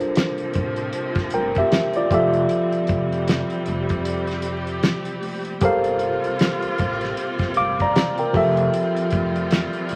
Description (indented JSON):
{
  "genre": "R&B, neo-soul",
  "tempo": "77 BPM",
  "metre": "4/4",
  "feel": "swing 60% on 16ths",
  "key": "G dorian",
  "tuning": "A4 = 440 Hz",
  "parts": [
    { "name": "tine electric piano", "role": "accompaniment", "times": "0.0-10.0 s", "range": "F3 to D6", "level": "-24 LUFS", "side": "equal", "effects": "none" },
    { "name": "clear studio string section", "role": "sustained chords", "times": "0.0-10.0 s", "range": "C3 to G4", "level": "-31 LUFS", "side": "equal", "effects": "none" },
    { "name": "upright bass", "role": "bass", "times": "0.0-10.0 s", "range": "F1 to F2", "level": "-32 LUFS", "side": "equal", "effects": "none" },
    { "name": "damped 70s drum kit", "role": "drums", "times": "0.0-10.0 s", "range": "hi-hat, kick drum, snare drum", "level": "-25 LUFS", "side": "equal", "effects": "none" }
  ],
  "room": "moderate large studio reverb, RT60 0.9 s",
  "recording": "vinyl crackle",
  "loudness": "-22 LUFS",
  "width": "mono",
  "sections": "0.0-10.0 A section",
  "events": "none",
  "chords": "0.0 Gm11; 2.1 Fmaj9; 5.6 Gm11; 8.3 Fmaj9"
}